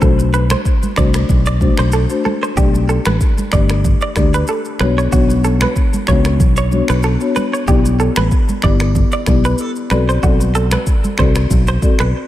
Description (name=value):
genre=afrobeats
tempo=94 BPM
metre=4/4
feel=swing 55% on 16ths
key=unclear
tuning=A4 = 440 Hz
part: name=marimba with soft mallets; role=accompaniment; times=0.0-12.0 s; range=A3 to D5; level=-19 LUFS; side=left 5 dB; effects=none
part: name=direct-recorded clean electric guitar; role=riff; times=0.0-12.1 s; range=F#4 to D5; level=-21 LUFS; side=right 4 dB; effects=lush chorus, tape echo
part: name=fingered electric bass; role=bass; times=0.0-12.1 s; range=G1 to D2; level=-16 LUFS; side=equal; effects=none
part: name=deep house drum kit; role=drums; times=0.0-12.1 s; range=finger snaps, kick drum, rim click, shaker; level=-16 LUFS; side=equal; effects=none
part: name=congas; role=percussion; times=0.0-12.0 s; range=none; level=-25 LUFS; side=right 4 dB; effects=none
room=light reverb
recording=none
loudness=-12 LUFS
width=side -14 dB against mid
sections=0.0-12.3 A section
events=none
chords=0.0 D7/B; 2.6 Gsus2; 4.8 Bmadd9; 7.7 Em7; 9.9 D7/B